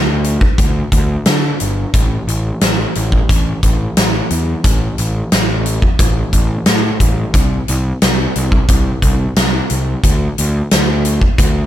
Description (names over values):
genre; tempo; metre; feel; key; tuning
classic rock; 89 BPM; 4/4; straight; unclear; A4 = 438 Hz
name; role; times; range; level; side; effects
fuzz picked electric bass; bass; 0.0-11.6 s; G1 to D3; -16 LUFS; equal; overdrive
huge arena drum kit; drums; 0.2-11.5 s; hi-hat, kick drum, snare drum; -14 LUFS; equal; none
room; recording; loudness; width
little or no reverb; none; -12 LUFS; side -12 dB against mid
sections
0.0-11.7 A section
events
none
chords
none